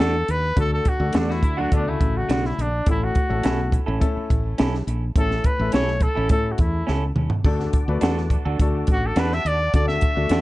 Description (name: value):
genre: uptempo 1960s-style soul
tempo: 105 BPM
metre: 4/4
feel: straight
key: D major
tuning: A4 = 439 Hz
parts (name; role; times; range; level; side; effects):
- warm trumpet; melody; 0.0-10.4 s; D4 to E5; -25 LUFS; equal; none
- clear grand piano; accompaniment; 0.0-10.4 s; A2 to D5; -28 LUFS; left 4 dB; none
- electric guitar through a small old amp; stabs; 0.0-10.4 s; A3 to A4; -30 LUFS; right 4 dB; analog delay
- woody fretless electric bass; bass; 0.0-10.4 s; A1 to A2; -24 LUFS; equal; none
- compact cocktail drum kit; drums; 0.0-10.4 s; hi-hat, kick drum, snare drum, splash cymbal, toms; -22 LUFS; equal; vintage 12-bit sampler grit
- clean electric guitar; riff; 1.3-2.7 s; C#3 to F#4; -30 LUFS; left 5 dB; none
- percussive tonewheel organ; sustained chords; 7.4-10.4 s; F#5 to D6; -37 LUFS; equal; slow rotary speaker, chorus vibrato
room: light reverb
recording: cassette tape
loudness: -19 LUFS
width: side -18 dB against mid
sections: 0.0-10.4 A section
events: trumpet solo 0.0-10.4; drum fill 6.9-7.5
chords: 0.0 D; 2.9 A; 7.5 D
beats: 0.00 | 0.57 1.15 1.72 2.29 | 2.87 3.44 4.01 4.59 | 5.16 5.74 6.31 6.88 | 7.46 8.03 8.60 9.18 | 9.75 10.32